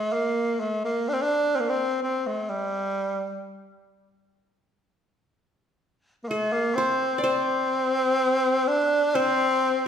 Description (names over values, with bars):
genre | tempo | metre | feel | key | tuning
Arabic maqam ensemble | free time | none | none | unclear | A4 = 440 Hz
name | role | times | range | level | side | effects
warm tenor saxophone | melody | 0.0-9.9 s | G3 to D4 | -23 LUFS | equal | none
qanun | second line | 6.3-9.9 s | Ab4+50c to D5 | -29 LUFS | equal | none
room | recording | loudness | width
wet recital hall reverb, RT60 1.6 s | recorded in a church or concert hall | -22 LUFS | side -8 dB against mid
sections
0.0-4.4 A section; 4.4-9.9 B section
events
none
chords
none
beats
free time